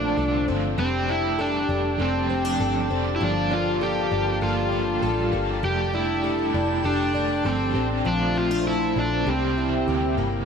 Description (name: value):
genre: dream pop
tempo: 99 BPM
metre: 4/4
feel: straight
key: unclear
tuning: A4 = 439 Hz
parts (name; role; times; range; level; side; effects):
- overdriven slide guitar; melody; 0.0-10.1 s; C4 to G4; -26 LUFS; right 2 dB; ping-pong delay
- overdriven electric guitar; accompaniment; 0.0-10.4 s; Bb2 to A4; -30 LUFS; right 4 dB; tremolo, analog chorus
- warm analog pad; sustained chords; 0.0-10.4 s; A3 to A5; -30 LUFS; left 2 dB; chorus
- fingerpicked plugged-in twelve-string acoustic guitar; arpeggios; 0.0-10.4 s; F3 to A4; -28 LUFS; left 4 dB; analog chorus, ping-pong delay
- vintage muted picked electric bass; bass; 0.0-10.4 s; F1 to D2; -28 LUFS; equal; none
- drifting glass-harmonics texture; texture; 1.9-10.4 s; A4 to D6; -37 LUFS; right 3 dB; chorus, built-in reverb, ping-pong delay
room: moderate plate reverb, RT60 2.3 s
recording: none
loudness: -21 LUFS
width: side -6 dB against mid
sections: 0.0-10.4 A section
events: none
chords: 0.0 Bbmaj9; 0.8 F69; 3.2 Gm9; 5.6 F69; 8.1 Bbmaj9; 9.3 C7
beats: 0.18 | 0.78 1.39 2.00 2.60 | 3.21 3.81 4.42 5.03 | 5.63 6.24 6.84 7.45 | 8.06 8.66 9.27 9.87